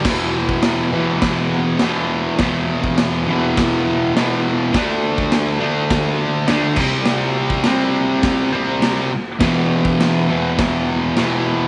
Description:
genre	garage rock duo or trio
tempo	103 BPM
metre	4/4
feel	straight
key	unclear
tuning	A4 = 444 Hz
part	fuzz guitar	riff	0.0-11.7 s	E2 to D4	-19 LUFS	equal	distortion
part	raw garage drum kit	drums	0.0-11.3 s	crash cymbal, kick drum, snare drum	-23 LUFS	equal	none
room	light reverb, small room ambience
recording	nothing above 10.5 kHz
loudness	-18 LUFS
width	mono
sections	0.1-11.7 A section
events	none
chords	0.1 E5; 4.7 D5; 6.8 C5; 9.4 E5

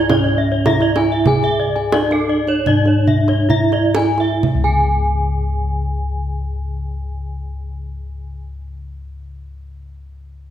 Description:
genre	Balinese gamelan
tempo	60-113 BPM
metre	4/4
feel	straight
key	unclear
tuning	A4 = 440 Hz
part	gamelan-type bronze metallophone	melody	0.0-8.4 s	C#4 to G#4	-19 LUFS	right 2 dB	none
part	gamelan-type bronze metallophone	arpeggios	0.0-8.4 s	A4 to G#5	-23 LUFS	right 4 dB	none
part	gamelan-type bossed gongs	bass	0.0-8.4 s	C#2 to G#4	-21 LUFS	left 2 dB	none
part	gamelan-type bronze metallophone	arpeggios	0.1-8.4 s	C#5 to G#5	-22 LUFS	left 4 dB	none
part	kendang	percussion	0.1-4.9 s	none	-21 LUFS	right 3 dB	none
room	moderate scoring stage reverb, RT60 1.6 s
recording	none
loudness	-15 LUFS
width	side -10 dB against mid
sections	0.0-4.4 A section; 4.4-8.4 B section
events	slowing down 0.0-4.4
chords	none

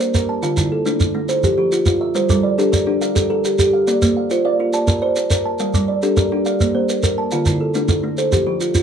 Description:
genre	southern african traditional, mbira-style interlocking cycle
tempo	140 BPM (dotted quarters)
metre	12/8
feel	straight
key	G dorian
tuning	A4 = 440 Hz
part	kalimba	arpeggios	0.0-8.8 s	D3 to F5	-19 LUFS	left 2 dB	none
part	kalimba	arpeggios	0.0-8.8 s	D3 to A5	-20 LUFS	right 4 dB	none
part	shekere	percussion	0.0-8.8 s	none	-20 LUFS	right 1 dB	none
room	light reverb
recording	small room ambience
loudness	-15 LUFS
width	side -8 dB against mid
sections	0.0-8.8 A section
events	none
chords	0.4 Dm; 1.3 F; 2.2 Gm; 3.9 Bb; 5.6 Gm; 6.5 Bb; 7.3 Dm; 8.2 F

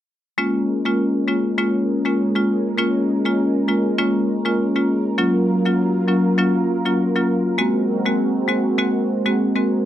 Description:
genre	afrobeats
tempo	100 BPM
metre	4/4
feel	swing 58% on 16ths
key	Bb minor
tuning	A4 = 441 Hz
part	marimba with hard mallets	accompaniment	0.4-9.7 s	Gb3 to Gb4	-18 LUFS	left 1 dB	none
part	warm analog pad	sustained chords	0.4-9.9 s	Gb3 to Bb4	-24 LUFS	right 3 dB	chorus
room	wet studio reverb, RT60 0.6 s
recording	none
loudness	-17 LUFS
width	side -11 dB against mid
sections	0.4-9.9 A section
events	none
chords	0.4 Bbm7; 5.2 Gbmaj7; 7.6 Ab9

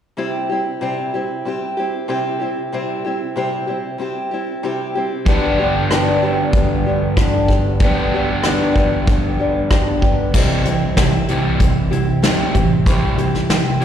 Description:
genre	folk rock and heartland rock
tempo	94 BPM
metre	4/4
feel	straight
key	unclear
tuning	A4 = 440 Hz
part	picked old ladder-braced acoustic guitar	accompaniment	0.2-13.8 s	G2 to G4	-20 LUFS	left 2 dB	slapback echo
part	crunchy overdriven guitar	riff	5.3-13.8 s	G2 to G4	-19 LUFS	right 2 dB	spring reverb
part	soft brush drum kit	drums	5.3-13.8 s	crash cymbal, hi-hat, kick drum, rim click, snare drum	-18 LUFS	equal	none
part	picked electric bass	bass	10.3-13.8 s	A1 to C2	-19 LUFS	right 1 dB	none
room	light reverb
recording	live gig heard through the venue's PA, recital hall reverb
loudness	-15 LUFS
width	side -9 dB against mid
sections	0.2-10.3 A section; 10.3-13.8 B section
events	none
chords	0.2 C; 5.3 G; 10.3 C

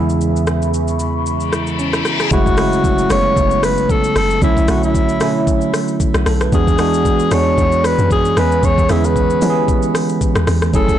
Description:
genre	amapiano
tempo	114 BPM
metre	4/4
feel	swing 55% on 16ths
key	unclear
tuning	A4 = 440 Hz
part	tine electric piano	accompaniment	0.0-11.0 s	C#3 to B4	-17 LUFS	right 3 dB	lush chorus
part	deep dark ambient pad	sustained chords	0.0-2.3 s	G#4 to C#6	-24 LUFS	right 1 dB	chorus, built-in reverb
part	hollow-body short-scale fingered electric bass	bass	0.0-2.0 s	E2	-20 LUFS	left 1 dB	none
part	smooth R&B drum kit	drums	0.1-11.0 s	hi-hat, kick drum, rim click, shaker	-19 LUFS	left 1 dB	soft clipping on snare
part	reverse cymbal and impact	sound effects	1.4-4.4 s	none	-24 LUFS	left 4 dB	none
part	breathy alto saxophone	melody	2.3-11.0 s	E4 to C#5	-18 LUFS	left 3 dB	ping-pong delay
part	deep log drum bass	bass	2.3-11.0 s	F#1 to E3	-20 LUFS	equal	none
room	little or no reverb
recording	blown-out, overdriven recording, overdrive, nothing above 10.9 kHz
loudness	-13 LUFS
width	side -11 dB against mid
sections	0.0-2.3 A section; 2.3-11.0 B section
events	reverse cymbal 1.4-2.3; drop 2.3-11.0; impact 2.3-4.4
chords	0.0 C#m7/E; 2.3 F#m9; 4.4 Bm11; 6.5 E7; 8.4 C#m7/E

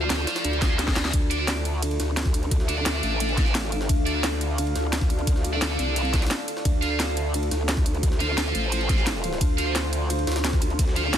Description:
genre	dark technical drum and bass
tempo	174 BPM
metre	4/4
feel	straight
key	D minor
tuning	A4 = 440 Hz
part	deep dark ambient pad	sustained chords	0.0-11.2 s	D4 to F5	-31 LUFS	equal	chorus, built-in reverb, sidechain pumping
part	scooped high-gain guitar	stabs	0.0-11.2 s	D4 to F5	-29 LUFS	right 2 dB	distortion, tape echo
part	growl bass	bass	0.0-11.2 s	A1 to D2	-27 LUFS	equal	chorus, tube saturation
part	drum and bass drum kit	drums	0.1-11.2 s	hi-hat, ride cymbal, snare drum	-29 LUFS	equal	overdrive
part	jungle sampler-style drum kit	drums	0.1-11.2 s	ride cymbal, snare drum	-36 LUFS	right 1 dB	none
part	reverse cymbal	sound effects	0.6-1.1 s	none	-35 LUFS	left 5 dB	none
part	electronic kick drum	drums	0.6-10.9 s	none	-23 LUFS	equal	overdrive
room	digital ambience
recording	dense, heavily limited modern master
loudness	-22 LUFS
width	side -9 dB against mid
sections	0.0-11.2 A section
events	reverse cymbal 0.6-1.1; drum fill 0.6-1.1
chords	0.0 F; 1.1 Dm; 6.7 F

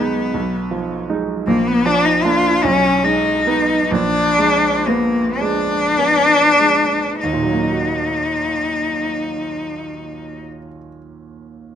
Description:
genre	classical, romantic duo for cello and grand piano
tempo	31-54 BPM (dotted quarters)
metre	6/8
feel	rubato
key	Eb minor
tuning	A4 = 440 Hz
part	rich cello	melody	0.0-10.4 s	Bb3 to F4	-16 LUFS	left 2 dB	none
part	warm grand piano	accompaniment	0.0-11.8 s	Bb1 to Gb4	-21 LUFS	right 5 dB	none
room	moderate recital hall reverb, RT60 1.4 s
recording	close, detailed microphones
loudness	-14 LUFS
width	side -9 dB against mid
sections	0.0-7.2 A section; 7.2-10.8 B section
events	slowing down 0.3-7.2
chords	0.3 Fm7b5/Cb; 1.5 Bb; 2.6 Abm/Cb; 3.9 Bb7b9; 7.2 Ebm

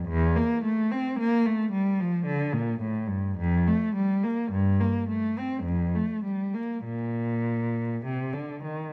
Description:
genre	classical, baroque-style suite movement for unaccompanied cello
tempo	49-56 BPM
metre	3/4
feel	rubato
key	Bb major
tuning	A4 = 438 Hz
part	warm cello	solo	0.0-8.9 s	E2 to C4	-27 LUFS	equal	none
room	moderate recital hall reverb, RT60 1.6 s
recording	close, detailed microphones, vinyl crackle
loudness	-27 LUFS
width	mono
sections	0.0-8.9 A section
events	none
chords	none

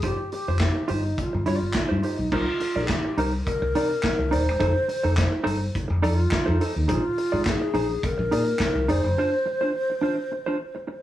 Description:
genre	disco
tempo	105 BPM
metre	4/4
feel	straight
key	C minor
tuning	A4 = 439 Hz
part	mellow hollow alto flute	melody	0.0-11.0 s	Eb4 to C5	-27 LUFS	equal	none
part	mellow electric guitar	accompaniment	0.0-10.9 s	D4 to D5	-28 LUFS	right 2 dB	none
part	fingered electric bass	bass	0.0-9.1 s	Eb1 to C3	-25 LUFS	equal	none
part	vintage drum kit	drums	0.0-9.0 s	crash cymbal, handclaps, hi-hat, kick drum, snare drum	-28 LUFS	equal	none
room	moderate studio reverb, RT60 0.6 s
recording	band playing live in one room, small room ambience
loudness	-22 LUFS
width	side -13 dB against mid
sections	0.0-2.3 A section; 2.3-11.0 B section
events	break 9.2-11.0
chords	0.0 G7sus4; 2.3 Cm7; 4.6 F7; 6.9 Bb9sus4; 9.2 Dm7

